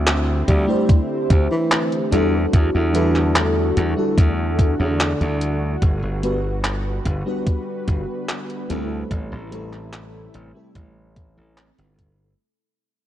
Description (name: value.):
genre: vaporwave.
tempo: 73 BPM.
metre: 4/4.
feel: straight.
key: A dorian.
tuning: A4 = 440 Hz.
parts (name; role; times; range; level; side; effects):
lush unison pad; sustained chords; 0.0-12.4 s; C3 to B4; -31 LUFS; equal; chorus.
glassy slap bass; bass; 0.0-12.3 s; G1 to E2; -22 LUFS; equal; tube saturation.
detuned 8-bit digital drum machine; drums; 0.1-12.2 s; handclaps, hi-hat; -23 LUFS; equal; overdrive, vintage 12-bit sampler grit.
breathy tenor saxophone; melody; 0.5-5.6 s; D3 to G3; -25 LUFS; equal; tape echo.
electronic kick drum; drums; 0.5-12.2 s; none; -16 LUFS; equal; vintage 12-bit sampler grit.
FM electric piano with soft pad layer; accompaniment; 0.7-12.4 s; G3 to C5; -23 LUFS; equal; ensemble chorus, tape echo.
room: light reverb, digital ambience.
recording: dark, warm production, cassette tape.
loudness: -18 LUFS.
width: side -12 dB against mid.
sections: 0.0-12.4 A section.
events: fade-out 3.6-12.4.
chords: 0.0 D9sus4; 2.1 Em11; 5.8 Gmaj7; 9.1 Am7.